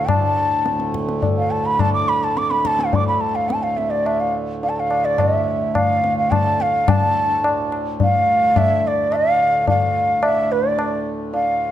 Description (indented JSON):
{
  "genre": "indian classical, Hindustani",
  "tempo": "107 BPM",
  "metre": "3/4",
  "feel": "straight",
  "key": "D raga shivaranjani",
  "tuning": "A4 = 440 Hz",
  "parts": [
    { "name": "breathy mellow bansuri", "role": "melody", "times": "0.0-11.7 s", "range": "D5 to D6", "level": "-18 LUFS", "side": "right 1 dB", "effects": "none" },
    { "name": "hand-pumped harmonium", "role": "drone", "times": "0.0-11.7 s", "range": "D2 to A2", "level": "-26 LUFS", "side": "equal", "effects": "none" },
    { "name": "tabla", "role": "percussion", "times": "0.1-11.5 s", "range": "none", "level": "-22 LUFS", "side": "left 3 dB", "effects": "none" }
  ],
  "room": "moderate recital hall reverb, RT60 1.5 s",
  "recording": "none",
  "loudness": "-16 LUFS",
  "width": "side -11 dB against mid",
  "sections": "0.0-6.9 A section; 6.9-11.7 B section",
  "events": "speeding up 0.0-11.7",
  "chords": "none"
}